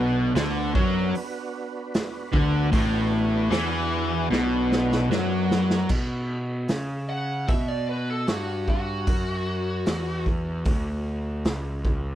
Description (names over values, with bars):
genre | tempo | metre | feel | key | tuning
blues rock power trio and southern rock | 76 BPM | 4/4 | straight | B minor | A4 = 440 Hz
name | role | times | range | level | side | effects
overdriven tonewheel organ | sustained chords | 0.0-5.9 s | B3 to B4 | -34 LUFS | right 4 dB | slow rotary speaker, chorus vibrato
overdriven electric guitar | riff | 0.0-5.9 s | A2 to F#3 | -23 LUFS | left 1 dB | none
fuzz picked electric bass | bass | 0.0-12.2 s | A1 to C#3 | -28 LUFS | equal | overdrive
raw garage drum kit | drums | 0.4-12.0 s | crash cymbal, hi-hat, kick drum, snare drum | -26 LUFS | equal | none
smooth overdriven lead guitar | melody | 7.1-10.2 s | F#4 to F#5 | -31 LUFS | equal | wah, tape echo
room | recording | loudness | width
small room ambience | none | -22 LUFS | side -12 dB against mid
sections
0.0-5.9 A section; 5.9-12.2 B section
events
drum fill 4.3-5.9; lead electric guitar solo 5.9-12.2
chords
0.0 Bm